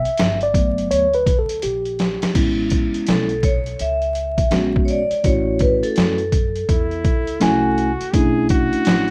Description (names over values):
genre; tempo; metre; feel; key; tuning
hip hop, jazz-hop; 83 BPM; 4/4; swing 62% on 16ths; A major; A4 = 440 Hz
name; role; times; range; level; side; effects
mellow tine electric piano; accompaniment; 0.0-9.1 s; F#3 to G#5; -22 LUFS; equal; plate reverb
upright bass; bass; 0.0-9.1 s; G1 to F#2; -30 LUFS; equal; none
trip hop sampler-style drum kit; drums; 0.1-9.1 s; crash cymbal, hi-hat, kick drum, snare drum; -22 LUFS; equal; none
vibraphone with medium hard mallets; melody; 3.1-7.7 s; A4 to E5; -25 LUFS; equal; analog delay, plate reverb
brilliant trombone; second line; 6.7-9.1 s; E4 to G#4; -26 LUFS; equal; plate reverb
room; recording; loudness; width
moderate studio reverb, RT60 0.5 s; rough home demo mix, vinyl crackle; -19 LUFS; mono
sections
0.0-2.4 A section; 2.4-9.1 B section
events
tine electric piano solo 0.0-2.4; drum fill 1.6-2.4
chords
0.0 Gmaj7; 2.4 Amaj9; 5.2 Amaj13; 8.1 Bm11